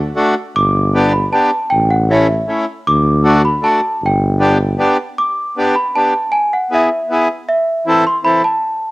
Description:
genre	alpine folk, alpine dance band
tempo	156 BPM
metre	3/4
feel	straight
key	G major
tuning	A4 = 441 Hz
part	warm tuba	bass	0.0-4.8 s	G1 to D2	-15 LUFS	equal	none
part	accordion	accompaniment	0.2-8.4 s	E3 to A4	-15 LUFS	equal	plate reverb
part	celesta	melody	0.6-8.9 s	E5 to D6	-15 LUFS	right 1 dB	plate reverb
room	moderate studio reverb, RT60 0.6 s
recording	home recording on cassette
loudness	-12 LUFS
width	side -20 dB against mid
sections	0.0-5.2 A section; 5.2-8.9 A section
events	none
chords	0.0 D; 0.6 G; 1.7 A; 2.9 D; 4.0 G; 6.3 E; 7.5 Am/E

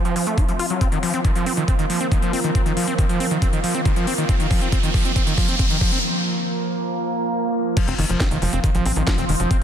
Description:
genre	psychedelic trance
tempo	138 BPM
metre	4/4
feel	straight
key	unclear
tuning	A4 = 441 Hz
part	evolving wavetable pad	sustained chords	0.0-9.6 s	F3 to C4	-25 LUFS	right 1 dB	phaser, built-in reverb, sidechain pumping
part	overdriven acid bass	riff	0.0-9.6 s	Eb3 to F4	-24 LUFS	moving between left 4 dB and right 4 dB	distortion, auto-pan, sidechain pumping, dub echo
part	drum and bass drum kit	drums	0.1-9.6 s	crash cymbal, hi-hat, snare drum	-29 LUFS	left 2 dB	high-pass filter on hats, high-pass filter on cymbals, high-pass filter on snare
part	electronic kick drum	drums	0.4-9.6 s	none	-20 LUFS	equal	none
part	riser	sound effects	2.7-6.0 s	none	-27 LUFS	right 1 dB	none
part	tight sequencer bass	bass	7.9-9.5 s	F1 to A1	-23 LUFS	equal	none
room	light reverb, digital ambience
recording	dense, heavily limited modern master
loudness	-18 LUFS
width	side -9 dB against mid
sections	0.0-7.8 A section; 7.8-9.6 B section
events	build-up 0.0-7.8; filter sweep on ambient pad 0.0-7.8; drum fill 0.8-6.0; riser 2.7-6.0; break 6.0-7.8; drop 7.8-9.6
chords	0.0 F5

